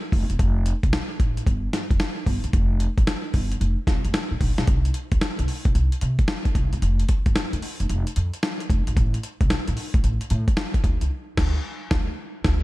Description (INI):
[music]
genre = R&B, new jack swing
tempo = 112 BPM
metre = 4/4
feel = swing 65% on 16ths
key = unclear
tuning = A4 = 439 Hz
[part]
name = upright bass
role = bass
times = 0.1-12.6 s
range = E1 to C3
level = -23 LUFS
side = equal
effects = none
[part]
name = dusty soul sampler-style drum kit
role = drums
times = 0.1-12.6 s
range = crash cymbal, hi-hat, kick drum, snare drum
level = -22 LUFS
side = equal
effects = none
[sound]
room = little or no reverb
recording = none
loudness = -20 LUFS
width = side -18 dB against mid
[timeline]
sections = 0.0-4.7 A section; 4.7-12.6 B section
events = band accent 11.1-12.6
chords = none